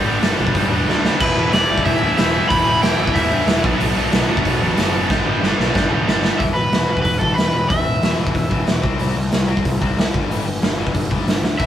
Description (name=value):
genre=punk rock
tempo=184 BPM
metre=4/4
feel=straight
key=E minor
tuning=A4 = 440 Hz
part: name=high-gain distorted guitar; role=riff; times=0.0-6.4 s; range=G2 to E4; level=-26 LUFS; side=equal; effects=none
part: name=tight distorted guitar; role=riff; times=0.0-11.7 s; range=E2 to C4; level=-25 LUFS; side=left 5 dB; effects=distortion
part: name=tight distorted guitar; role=riff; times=0.0-6.4 s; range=B2 to G4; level=-21 LUFS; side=right 2 dB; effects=distortion
part: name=fuzz picked electric bass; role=bass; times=0.1-11.7 s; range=E1 to D2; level=-23 LUFS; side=equal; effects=overdrive
part: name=raw garage drum kit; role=drums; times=0.2-11.7 s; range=crash cymbal, hi-hat, kick drum, snare drum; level=-19 LUFS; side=equal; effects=none
part: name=crunchy overdriven guitar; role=melody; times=1.2-3.6, 6.4-8.1, 11.6-11.7 s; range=A4 to B5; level=-21 LUFS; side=equal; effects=tape echo
room=light reverb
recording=rough rehearsal-room recording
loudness=-15 LUFS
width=side -10 dB against mid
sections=0.0-6.4 A section; 6.4-11.7 B section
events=drum fill 0.9-1.2, 5.1-6.4, 11.4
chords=0.0 Em; 3.6 Bm; 5.1 G; 6.4 E5; 8.8 C5; 10.1 G5